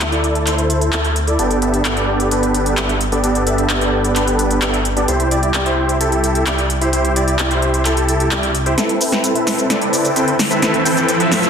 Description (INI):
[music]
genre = EDM, festival progressive house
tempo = 130 BPM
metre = 4/4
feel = straight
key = A minor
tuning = A4 = 441 Hz
[part]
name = supersaw chords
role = riff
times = 0.0-11.5 s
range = B3 to G5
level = -16 LUFS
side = equal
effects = low-pass filter, ping-pong delay
[part]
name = wide detuned saw bass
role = bass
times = 0.0-8.8 s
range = G1 to D2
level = -20 LUFS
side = equal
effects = chorus
[part]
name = big-room dance drum kit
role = drums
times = 0.0-11.5 s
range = handclaps, hi-hat, shaker, snare drum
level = -20 LUFS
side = equal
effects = none
[part]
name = riser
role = sound effects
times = 9.7-11.5 s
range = none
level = -22 LUFS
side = right 2 dB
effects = none
[sound]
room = moderate lush hall reverb, RT60 1.8 s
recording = dense, heavily limited modern master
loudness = -14 LUFS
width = side -7 dB against mid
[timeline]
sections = 0.0-8.8 A section; 8.8-11.5 B section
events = build-up 8.8-11.5; drum fill 8.8-11.5; filter sweep on supersaw synth 8.8-11.5; riser 9.7-11.5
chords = 0.0 Dsus2; 1.4 Gadd9; 5.1 C; 8.8 Amadd9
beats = 0.01 0.47 0.93 | 1.39 1.85 2.31 2.78 | 3.24 3.70 4.16 4.62 | 5.08 5.55 6.01 6.47 | 6.93 7.39 7.85 8.31 | 8.78 9.24 9.70 10.16 | 10.62 11.09